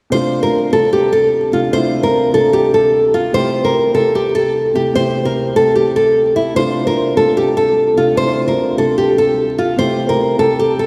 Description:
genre	hip hop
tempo	149 BPM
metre	4/4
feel	half-time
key	D minor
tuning	A4 = 441 Hz
part	nylon-string guitar	melody	0.1-10.9 s	E4 to C5	-15 LUFS	equal	tape echo
part	dark concert grand piano	accompaniment	0.1-10.9 s	C3 to G4	-21 LUFS	equal	none
room	wet lush hall reverb, RT60 2.6 s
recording	dreamy mix soaked in reverb, vinyl crackle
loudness	-14 LUFS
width	mono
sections	0.1-10.9 A section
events	none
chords	0.1 Dm7; 3.3 Am7; 6.6 Dm7; 9.8 Am7

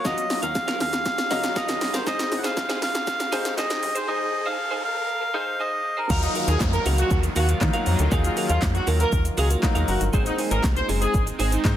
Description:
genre	dance-pop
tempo	119 BPM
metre	4/4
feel	straight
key	Eb dorian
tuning	A4 = 440 Hz
part	melodica	melody	0.0-6.2 s	Bb4 to Gb5	-26 LUFS	equal	digital delay
part	bright concert grand piano	accompaniment	0.0-11.8 s	Gb3 to Eb5	-31 LUFS	left 4 dB	sidechain pumping
part	twelve-string electric guitar	riff	0.0-11.7 s	Eb4 to F5	-31 LUFS	right 4 dB	lush chorus
part	riser and downlifter	sound effects	0.0-10.1 s	none	-35 LUFS	equal	none
part	slap-like FM bass	bass	0.1-11.7 s	Gb1 to Eb3	-24 LUFS	equal	sidechain pumping
part	deep house drum kit	drums	0.1-11.8 s	crash cymbal, handclaps, hi-hat, kick drum, shaker, snare drum	-26 LUFS	equal	overdrive
part	sweeping resonant pad	sustained chords	6.1-11.8 s	Eb3 to F4	-31 LUFS	equal	chorus, sidechain pumping
part	warm horn section	melody	6.2-11.5 s	Eb4 to C5	-28 LUFS	equal	sidechain pumping, digital delay
room	light reverb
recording	dense, heavily limited modern master, high-pass filter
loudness	-21 LUFS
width	side -11 dB against mid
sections	0.0-6.1 A section; 6.1-11.8 B section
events	build-up 0.0-6.1; drum fill 0.0-4.1; riser 0.0-6.1; drop 6.1-11.8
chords	0.0 Ebmadd9; 2.1 Ab; 6.1 Ebmadd9; 10.1 Ab

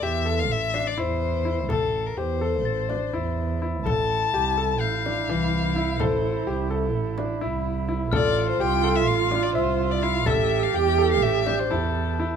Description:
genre	contemporary instrumental, chamber music in an uneven meter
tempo	252 BPM (eighths)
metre	9/8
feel	straight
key	A minor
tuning	A4 = 440 Hz
part	warm violin	melody	0.0-12.3 s	A4 to A5	-27 LUFS	left 8 dB	none
part	bright baby grand piano	arpeggios	0.0-12.4 s	E3 to E5	-28 LUFS	left 3 dB	none
part	rich double bass	bass	0.0-12.4 s	A1 to E2	-27 LUFS	right 4 dB	none
part	frame drum	percussion	0.5-12.1 s	none	-31 LUFS	left 2 dB	none
part	glockenspiel with hard plastic mallets	texture	0.7-12.0 s	F6 to C7	-36 LUFS	left 7 dB	none
part	dark cello	second line	3.9-12.2 s	E4 to G4	-27 LUFS	right 10 dB	none
room	light reverb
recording	none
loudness	-21 LUFS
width	side -7 dB against mid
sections	0.0-12.4 A section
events	none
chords	0.0 Am; 3.9 Fadd9/A; 10.3 A5

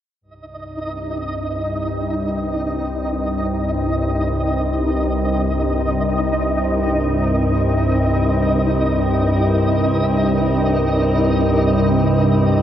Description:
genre	dark ambient drone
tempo	free time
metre	none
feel	none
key	C minor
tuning	A4 = 440 Hz
part	granular cloud pad	sustained chords	1.5-12.6 s	C4 to Eb5	-27 LUFS	equal	built-in reverb
part	organ-like drone	drone	0.7-12.6 s	C2 to G2	-18 LUFS	equal	ensemble chorus, built-in reverb
part	flickering grainy texture	texture	0.4-12.6 s	Eb4 to Eb5	-22 LUFS	equal	built-in reverb
room	wet huge ambient reverb, RT60 8.2 s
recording	worn, warbling old tape, cassette tape, warbly pitch drift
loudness	-16 LUFS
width	side -10 dB against mid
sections	0.2-12.6 A section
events	fade-in on ambient pad 0.2-12.6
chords	0.2 Cm7

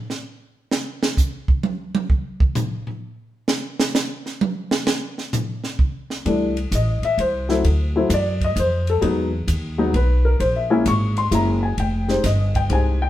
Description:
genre	jazz piano trio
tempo	130 BPM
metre	3/4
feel	swing 67% on 8ths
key	unclear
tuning	A4 = 441 Hz
part	compact cocktail drum kit	drums	0.1-12.8 s	hi-hat, kick drum, ride cymbal, snare drum, toms	-22 LUFS	right 2 dB	none
part	warm upright piano	melody	6.3-13.1 s	E3 to C#6	-20 LUFS	left 2 dB	none
part	upright bass	bass	6.3-13.1 s	F1 to F#2	-20 LUFS	equal	none
room	moderate stone room reverb, RT60 1.1 s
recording	band playing live in one room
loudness	-18 LUFS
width	side -13 dB against mid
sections	0.0-6.2 A section; 6.2-13.1 B section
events	drum solo 0.0-6.2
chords	0.0 N.C.; 6.2 C6; 7.6 D7; 9.0 Emaj9; 10.4 F#9; 11.8 Fm9

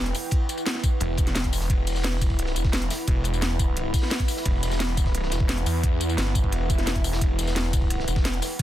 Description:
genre	dark technical drum and bass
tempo	174 BPM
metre	4/4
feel	straight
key	E minor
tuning	A4 = 441 Hz
part	deep dark ambient pad	sustained chords	0.0-8.6 s	E4 to B5	-32 LUFS	right 1 dB	chorus, built-in reverb, sidechain pumping
part	snarling distorted saw bass	bass	0.0-8.6 s	E1 to E2	-26 LUFS	equal	distortion, tube saturation, sidechain pumping
part	crunchy breakbeat drum kit	drums	0.1-8.6 s	hi-hat, ride cymbal, snare drum	-37 LUFS	equal	high-pass filter on cymbals, high-pass filter on hats, high-pass filter on snare, high-pass filter on room
part	drum and bass drum kit	drums	0.1-8.6 s	hi-hat, snare drum, tambourine	-29 LUFS	equal	none
part	electronic kick drum	drums	0.3-8.6 s	none	-23 LUFS	equal	none
part	swell	sound effects	6.7-7.2 s	none	-36 LUFS	equal	none
room	little or no reverb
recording	dense, heavily limited modern master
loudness	-22 LUFS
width	side -13 dB against mid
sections	0.0-8.6 A section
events	swell 6.7-7.2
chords	0.0 Emadd9

